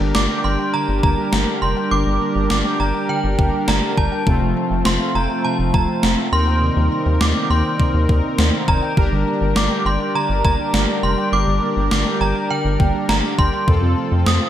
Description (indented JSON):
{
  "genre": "synth-pop",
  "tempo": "102 BPM",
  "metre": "4/4",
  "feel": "straight",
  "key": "G minor",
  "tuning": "A4 = 440 Hz",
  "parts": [
    { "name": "synth chime", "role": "melody", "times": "0.0-14.5 s", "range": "G5 to Eb6", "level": "-23 LUFS", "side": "right 2 dB", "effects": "ensemble chorus" },
    { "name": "analog synth brass", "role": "accompaniment", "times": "0.0-14.5 s", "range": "A3 to Bb4", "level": "-25 LUFS", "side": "left 2 dB", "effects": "chorus" },
    { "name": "warm analog pad", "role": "sustained chords", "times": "0.0-14.5 s", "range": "Eb3 to D5", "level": "-25 LUFS", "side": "right 1 dB", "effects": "chorus" },
    { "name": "rubbery square bass", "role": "bass", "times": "0.0-14.4 s", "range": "F1 to F2", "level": "-20 LUFS", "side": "equal", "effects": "none" },
    { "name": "handpan", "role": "arpeggios", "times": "0.1-14.5 s", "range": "C3 to G5", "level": "-27 LUFS", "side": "right 2 dB", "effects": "ping-pong delay" },
    { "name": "gated 80s digital drum machine", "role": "drums", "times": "0.1-14.4 s", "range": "kick drum, snare drum", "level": "-20 LUFS", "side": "equal", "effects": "gated reverb, gated reverb snare, overdrive" }
  ],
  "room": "light reverb, digital ambience",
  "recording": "bright 1980s-style digital production",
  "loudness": "-16 LUFS",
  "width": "side -11 dB against mid",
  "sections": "0.0-14.5 A section",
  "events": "none",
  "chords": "0.0 Gm; 4.3 F; 6.3 Cm7/Eb; 9.0 Gm; 13.7 F",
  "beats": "0.15 0.74 1.33 | 1.92 2.50 3.09 3.68 | 4.27 4.86 5.45 6.03 | 6.62 7.21 7.80 8.39 | 8.97 9.56 10.15 10.74 | 11.33 11.91 12.50 13.09 | 13.68 14.27"
}